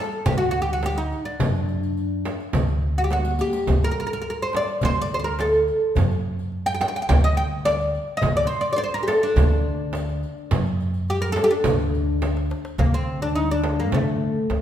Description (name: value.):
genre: Arabic maqam ensemble.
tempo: 105 BPM.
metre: 4/4.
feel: straight.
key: D maqam hijaz.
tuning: A4 = 440 Hz.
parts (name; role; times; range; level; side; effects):
oud; melody; 0.0-14.5 s; A3 to G5; -23 LUFS; equal; none.
riq; percussion; 0.1-12.7 s; none; -37 LUFS; left 1 dB; none.
upright bass; bass; 0.3-14.6 s; D2 to D3; -24 LUFS; equal; none.
darbuka; percussion; 0.3-14.6 s; none; -29 LUFS; left 3 dB; none.
frame drum; percussion; 0.3-14.6 s; none; -29 LUFS; right 4 dB; none.
room: moderate recital hall reverb, RT60 1.6 s.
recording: minimal, uncompressed stereo recording.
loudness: -20 LUFS.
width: side -10 dB against mid.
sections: 0.0-12.8 A section; 12.8-14.6 B section.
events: drum fill 3.1-3.7, 12.2-12.8.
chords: none.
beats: 0.26 0.83 | 1.40 1.97 2.54 3.11 | 3.68 4.25 4.82 5.39 | 5.96 6.53 7.10 7.67 | 8.24 8.81 9.38 9.95 | 10.52 11.08 11.65 12.22 | 12.79 13.36 13.93 14.49.